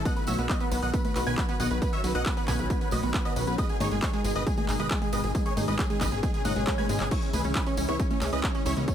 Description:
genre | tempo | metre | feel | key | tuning
uplifting trance | 136 BPM | 4/4 | straight | unclear | A4 = 436 Hz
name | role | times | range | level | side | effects
analog string pad | sustained chords | 0.0-8.9 s | B2 to F#4 | -34 LUFS | left 3 dB | ensemble chorus, sidechain pumping
plucky analog bass | bass | 0.0-8.9 s | G#1 to G#2 | -30 LUFS | equal | sidechain pumping
big supersaw lead | melody | 0.1-8.9 s | C#4 to G#5 | -34 LUFS | right 1 dB | phaser, sidechain pumping, ping-pong delay
clear concert grand piano | second line | 0.1-8.9 s | C#5 to G#6 | -37 LUFS | left 2 dB | sidechain pumping, ping-pong delay
analog pluck | arpeggios | 0.1-8.9 s | G#3 to G#4 | -34 LUFS | right 4 dB | chorus, sidechain pumping, ping-pong delay
electronic kick drum | drums | 0.1-8.9 s | none | -28 LUFS | equal | overdrive
techno drum kit | drums | 0.1-8.9 s | congas, crash cymbal, handclaps, hi-hat | -34 LUFS | left 1 dB | overdrive
tambourine | percussion | 0.1-8.9 s | none | -44 LUFS | right 4 dB | none
swell | sound effects | 6.4-7.1 s | none | -37 LUFS | left 2 dB | none
room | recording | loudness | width
little or no reverb | none | -25 LUFS | side -9 dB against mid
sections
0.0-8.9 A section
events
swell 6.4-7.1; drum fill 6.7-7.1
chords
0.1 B; 3.6 G#m; 7.1 C#m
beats
| 0.05 0.49 0.94 1.38 | 1.82 2.26 2.70 3.14 | 3.58 4.03 4.47 4.91 | 5.35 5.79 6.23 6.67 | 7.11 7.55 8.00 8.44 | 8.88

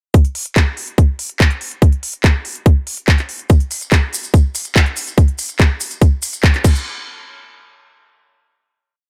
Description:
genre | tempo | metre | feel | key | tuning
trance | 143 BPM | 4/4 | straight | none | none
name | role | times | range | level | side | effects
drum and bass drum kit | drums | 0.1-6.7 s | crash cymbal, handclaps, hi-hat | -23 LUFS | equal | none
electronic kick drum | drums | 0.1-6.7 s | none | -13 LUFS | equal | none
maracas | percussion | 3.5-6.8 s | none | -28 LUFS | equal | none
room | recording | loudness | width
little or no reverb | none | -16 LUFS | mono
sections
0.1-6.9 groove; 6.9-8.5 final hit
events
band accent 6.4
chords
none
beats
| 0.14 0.56 0.98 1.40 | 1.82 2.24 2.66 3.08 | 3.50 3.92 4.34 4.76 | 5.18 5.60 6.01 6.43

